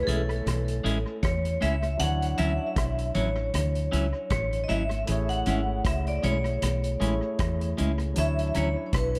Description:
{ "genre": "lovers rock reggae", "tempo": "78 BPM", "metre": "4/4", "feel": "swing 56% on 16ths", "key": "A major", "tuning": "A4 = 440 Hz", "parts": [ { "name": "vibraphone with hard mallets", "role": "melody", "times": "0.0-9.2 s", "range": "G#4 to F#5", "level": "-33 LUFS", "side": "equal", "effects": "tape echo" }, { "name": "barky tine electric piano", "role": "accompaniment", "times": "0.0-9.2 s", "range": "F#3 to G#5", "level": "-38 LUFS", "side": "equal", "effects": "overdrive, tape echo" }, { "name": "deep dub fingered electric bass", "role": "bass", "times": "0.0-9.2 s", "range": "G#1 to E2", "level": "-30 LUFS", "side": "equal", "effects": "none" }, { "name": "clean electric guitar", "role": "stabs", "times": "0.1-8.7 s", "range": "F#3 to E4", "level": "-34 LUFS", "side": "equal", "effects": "phaser" }, { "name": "vintage drum kit", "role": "drums", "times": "0.1-9.2 s", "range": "hi-hat, kick drum, rim click", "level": "-35 LUFS", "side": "equal", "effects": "tape echo" }, { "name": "congas", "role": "percussion", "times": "0.1-8.8 s", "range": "none", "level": "-40 LUFS", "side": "equal", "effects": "none" } ], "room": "light reverb, studio ambience", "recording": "none", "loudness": "-27 LUFS", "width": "mono", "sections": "0.0-9.2 A section", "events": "none", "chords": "0.0 Amaj7; 2.0 Dmaj9; 5.1 Amaj7; 8.2 Dmaj9" }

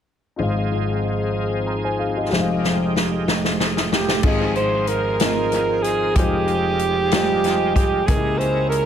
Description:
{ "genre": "slow gospel", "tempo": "62 BPM (dotted quarters)", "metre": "6/8", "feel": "straight", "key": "Ab major", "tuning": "A4 = 440 Hz", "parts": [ { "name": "dark concert grand piano", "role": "accompaniment", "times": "0.4-8.9 s", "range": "F1 to Bb5", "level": "-22 LUFS", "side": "left 2 dB", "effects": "analog delay" }, { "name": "bright tonewheel organ", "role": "sustained chords", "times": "0.4-8.9 s", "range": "F3 to Bb4", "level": "-27 LUFS", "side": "right 2 dB", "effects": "slow rotary speaker, overdrive, chorus vibrato" }, { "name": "warm French horn section", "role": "sustained chords", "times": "0.4-4.2 s", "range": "Ab3 to Ab4", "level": "-32 LUFS", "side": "equal", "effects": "none" }, { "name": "swinging big-band drum kit", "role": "drums", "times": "2.3-8.9 s", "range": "crash cymbal, hi-hat, kick drum, snare drum", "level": "-22 LUFS", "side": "equal", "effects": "analog delay" }, { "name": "clear alto saxophone", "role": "melody", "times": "3.9-8.9 s", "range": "G4 to C5", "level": "-20 LUFS", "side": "right 3 dB", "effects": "analog delay" } ], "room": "light reverb, studio ambience", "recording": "echo-heavy mix", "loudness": "-18 LUFS", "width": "side -9 dB against mid", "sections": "0.4-4.2 A section; 4.2-8.9 B section", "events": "drum fill 2.3-4.2", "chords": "0.4 Ab6; 2.3 Fm9; 4.2 Ab6; 6.2 Fm9; 8.1 Dbm6" }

